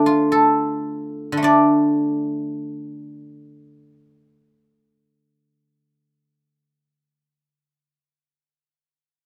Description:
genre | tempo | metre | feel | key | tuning
chinese traditional, Chinese solo plucked strings | 56 BPM | 4/4 | rubato | D yu mode | A4 = 440 Hz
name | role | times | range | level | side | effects
guzheng | solo | 0.0-8.0 s | D3 to D5 | -20 LUFS | equal | none
room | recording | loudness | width
wet studio reverb, RT60 0.5 s | rough home demo mix | -19 LUFS | mono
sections
0.0-1.4 A section; 1.4-5.8 B section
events
slowing down 0.0-1.4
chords
none

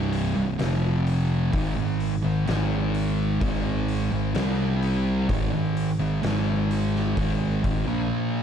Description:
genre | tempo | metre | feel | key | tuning
stoner and doom metal | 64 BPM | 4/4 | straight | unclear | A4 = 439 Hz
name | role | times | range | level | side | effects
thick fuzz guitar | riff | 0.0-8.4 s | C2 to C4 | -27 LUFS | left 8 dB | distortion
thick fuzz guitar | riff | 0.0-8.4 s | C2 to C4 | -27 LUFS | right 8 dB | distortion
picked electric bass | bass | 0.0-8.1 s | C1 to C2 | -28 LUFS | equal | overdrive
oversized low-tuned drum kit | drums | 0.1-7.9 s | hi-hat, kick drum, snare drum | -32 LUFS | equal | none
room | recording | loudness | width
moderate large studio reverb, RT60 1.0 s, studio ambience | dark, warm production | -22 LUFS | side -8 dB against mid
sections
0.0-8.4 A section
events
none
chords
0.0 C5; 0.6 F5; 1.5 Ab5; 4.4 C5; 5.3 Ab5

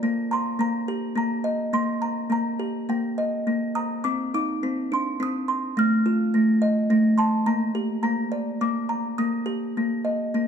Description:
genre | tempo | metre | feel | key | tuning
children's music, lullaby | 105 BPM | 3/4 | rubato | Eb major | A4 = 440 Hz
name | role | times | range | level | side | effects
music box | solo | 0.0-10.5 s | A3 to F6 | -22 LUFS | equal | none
room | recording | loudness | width
wet recital hall reverb, RT60 1.5 s | none | -22 LUFS | side -7 dB against mid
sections
0.0-10.5 A section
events
none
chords
0.0 Bb; 0.6 Eb/Bb; 3.5 N.C.; 4.0 Cmadd9; 5.8 F7; 7.5 Gm/Bb; 8.0 Bb; 9.2 Eb

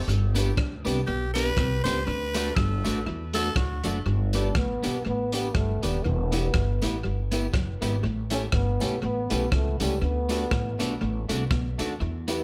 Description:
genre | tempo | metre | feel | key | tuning
ska | 121 BPM | 4/4 | swing 57% on 8ths | G major | A4 = 435 Hz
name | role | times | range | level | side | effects
raspy tenor saxophone | melody | 0.0-3.8 s | F#4 to C5 | -34 LUFS | equal | tape echo, plate reverb
upright bass | bass | 0.0-12.4 s | Eb1 to E2 | -30 LUFS | equal | tube saturation
clean electric guitar | riff | 0.1-12.2 s | Eb3 to E4 | -38 LUFS | equal | warbly pitch drift, tape echo
crunchy breakbeat drum kit | drums | 0.1-12.4 s | hi-hat, kick drum, rim click | -32 LUFS | equal | tape echo
electric guitar at the edge of break-up | accompaniment | 0.3-12.4 s | A3 to G4 | -36 LUFS | equal | spring reverb, tape echo, plate reverb
warm upright piano | stabs | 0.4-12.4 s | A3 to B4 | -39 LUFS | equal | plate reverb
tambourine | percussion | 0.4-12.4 s | none | -48 LUFS | equal | none
breathy trombone | melody | 4.4-12.4 s | G3 to D4 | -34 LUFS | equal | tape echo
room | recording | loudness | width
light reverb | none | -26 LUFS | mono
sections
0.0-4.1 A section; 4.1-12.4 B section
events
tenor saxophone solo 0.0-4.1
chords
0.1 G; 2.1 D; 4.1 G; 6.0 Em; 8.0 A7; 10.0 D

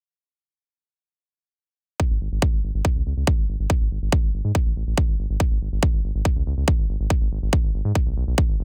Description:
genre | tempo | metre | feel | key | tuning
psychedelic trance | 141 BPM | 4/4 | straight | G# phrygian | A4 = 441 Hz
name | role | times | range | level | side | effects
electronic kick drum | drums | 2.0-8.5 s | none | -22 LUFS | equal | none
round analog bass | bass | 2.1-8.6 s | G#1 to G#2 | -26 LUFS | equal | none
room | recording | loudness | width
little or no reverb | dense, heavily limited modern master | -23 LUFS | mono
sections
2.0-8.6 A section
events
none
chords
none

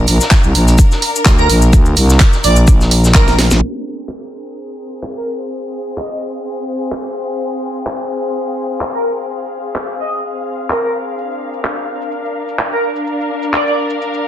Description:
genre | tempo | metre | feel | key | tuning
bass house | 127 BPM | 4/4 | swing 54% on 16ths | F dorian | A4 = 440 Hz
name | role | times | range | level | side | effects
growling FM bass | bass | 0.0-3.6 s | Bb1 to D2 | -11 LUFS | equal | overdrive, sidechain pumping
dark studio string section | texture | 0.0-14.3 s | C4 to F5 | -21 LUFS | left 2 dB | sidechain pumping
house drum kit | drums | 0.1-13.6 s | handclaps, hi-hat, snare drum | -18 LUFS | right 1 dB | low-pass filter on hats, soft clipping on snare, low-pass filter on snare, low-pass filter on room
loose indie drum kit | drums | 0.1-3.5 s | hi-hat, shaker, snare drum | -24 LUFS | equal | sidechain pumping on hats, high-pass filter on hats, high-pass filter on snare, sidechain pumping on perc, high-pass filter on perc, high-pass filter on room
cabasa | percussion | 0.2-3.6, 11.2-14.2 s | none | -23 LUFS | left 4 dB | none
electronic kick drum | drums | 0.3-3.3 s | none | -10 LUFS | equal | none
airy dreamy lead | melody | 1.4-13.7 s | Bb4 to Eb5 | -20 LUFS | right 1 dB | chorus, digital delay
room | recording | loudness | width
light reverb, small room ambience | dense, heavily limited modern master, low-pass filter | -13 LUFS | side -12 dB against mid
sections
0.0-3.6 A section; 3.6-14.3 B section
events
drum fill 3.3-3.6; band accent 3.5; filter sweep 3.6-14.3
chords
0.0 Bb; 3.6 Fm

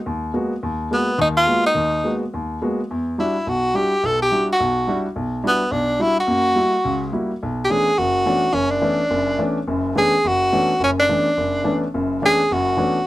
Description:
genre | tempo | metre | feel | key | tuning
jazz | 212 BPM | 4/4 | swing 60% on 8ths | B dorian from 7.4 s | A4 = 440 Hz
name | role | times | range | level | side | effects
warm baby grand piano | accompaniment | 0.1-13.0 s | F#1 to F#4 | -22 LUFS | equal | none
clear tenor saxophone | melody | 0.9-13.1 s | B3 to A4 | -18 LUFS | equal | none
room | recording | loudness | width
little or no reverb | close, detailed microphones | -17 LUFS | side -16 dB against mid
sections
0.0-7.4 A section; 7.4-13.1 B section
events
none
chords
0.0 G#m9; 2.9 Em9; 6.3 F#7b9; 7.4 Bm11

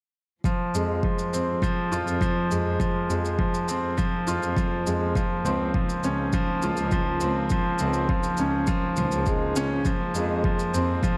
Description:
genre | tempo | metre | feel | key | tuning
piano and strings electronica | 102 BPM | 4/4 | straight | F minor | A4 = 440 Hz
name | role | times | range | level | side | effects
muted studio string section | sustained chords | 0.4-11.2 s | F3 to Ab4 | -41 LUFS | equal | none
electronic kick drum | drums | 0.4-11.2 s | none | -29 LUFS | equal | none
bright concert grand piano | riff | 0.5-11.2 s | F3 to F4 | -27 LUFS | equal | delay
shaker | drums | 0.5-11.2 s | none | -40 LUFS | equal | none
muted chamber cello section | bass | 0.7-10.9 s | Db2 to F2 | -32 LUFS | equal | sidechain pumping
room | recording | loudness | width
moderate echo chamber reverb, RT60 1.8 s | dark, warm production | -25 LUFS | mono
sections
0.5-11.2 A section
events
none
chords
0.5 Fm; 5.2 Dbmaj7; 9.9 Fm

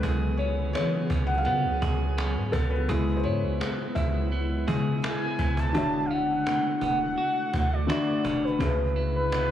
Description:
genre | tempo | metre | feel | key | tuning
contemporary R&B | 84 BPM | 4/4 | straight | unclear | A4 = 444 Hz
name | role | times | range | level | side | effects
felt-muted upright piano | accompaniment | 0.0-9.5 s | C#3 to F#5 | -29 LUFS | left 2 dB | none
ethereal airy pad | sustained chords | 0.0-9.5 s | C#3 to G#4 | -34 LUFS | left 2 dB | ensemble chorus, built-in reverb
clean electric guitar | arpeggios | 0.0-9.5 s | C#3 to G#4 | -34 LUFS | right 4 dB | spring reverb
soft 808-style bass | bass | 0.0-9.5 s | D1 to E3 | -28 LUFS | equal | none
cajon | drums | 0.0-9.5 s | none | -35 LUFS | equal | none
mellow horn-like synth lead | melody | 5.0-9.5 s | B4 to A5 | -28 LUFS | equal | chorus, phaser, digital delay
room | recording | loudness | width
light reverb | studio ambience | -24 LUFS | side -11 dB against mid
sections
0.0-5.7 A section; 5.7-9.5 B section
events
felt piano solo 0.0-5.7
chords
0.0 Amaj13/C#; 2.9 C#m7; 5.7 Dmaj7; 8.6 C#m7

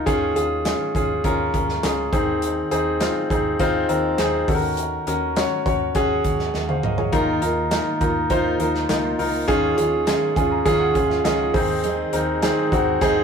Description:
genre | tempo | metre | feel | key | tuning
piano-driven pop | 102 BPM | 4/4 | straight | unclear | A4 = 440 Hz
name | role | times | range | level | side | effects
clear baby grand piano | accompaniment | 0.0-13.2 s | Eb3 to Bb5 | -20 LUFS | equal | none
vintage muted picked electric bass | bass | 0.1-13.2 s | Db2 to Eb2 | -30 LUFS | equal | none
modern studio drum kit | drums | 0.1-13.2 s | handclaps, hi-hat, kick drum, snare drum, toms | -26 LUFS | equal | none
picked steel-string acoustic guitar | riff | 7.1-13.2 s | Eb3 to Bb4 | -27 LUFS | right 3 dB | none
room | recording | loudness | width
wet studio reverb, RT60 0.7 s | rough rehearsal-room recording | -18 LUFS | side -6 dB against mid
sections
0.0-13.2 A section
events
drum fill 6.5-7.1; grand piano fill 10.1-11.8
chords
0.1 Db/Eb; 2.1 Ab/Eb; 4.5 Gb/Eb; 7.1 Ebsus2; 9.5 Db/Eb; 11.5 Ab/Eb

